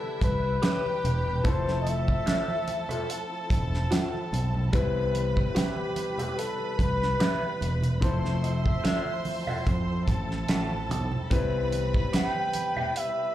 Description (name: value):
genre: lush 1970s-style soul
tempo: 73 BPM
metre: 4/4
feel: swing 54% on 16ths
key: C major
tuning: A4 = 441 Hz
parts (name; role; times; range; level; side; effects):
- breathy flugelhorn; melody; 0.0-13.3 s; G4 to G5; -31 LUFS; equal; slapback echo
- clear chamber violin section; second line; 0.0-13.3 s; E4 to C6; -37 LUFS; right 1 dB; slapback echo
- clear concert grand piano; accompaniment; 0.0-13.3 s; E3 to B4; -34 LUFS; left 4 dB; slapback echo
- tonewheel organ; sustained chords; 0.0-13.3 s; C3 to B4; -40 LUFS; equal; fast rotary speaker, overdrive
- congas; percussion; 0.0-12.9 s; none; -36 LUFS; right 3 dB; none
- fingered electric bass; bass; 0.2-12.0 s; E1 to F2; -28 LUFS; equal; none
- damped 70s drum kit; drums; 0.2-13.2 s; hi-hat, kick drum, snare drum; -28 LUFS; right 1 dB; none
- electric guitar through a small old amp; riff; 0.6-12.9 s; F4 to E5; -35 LUFS; right 2 dB; phaser, slapback echo
room: light reverb, small room reverb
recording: live gig heard through the venue's PA, club reverb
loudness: -25 LUFS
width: side -13 dB against mid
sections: 0.0-13.3 A section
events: none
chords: 0.0 Cmaj7; 1.4 Fmaj7; 4.7 Cmaj7; 8.0 Fmaj7; 11.3 Cmaj7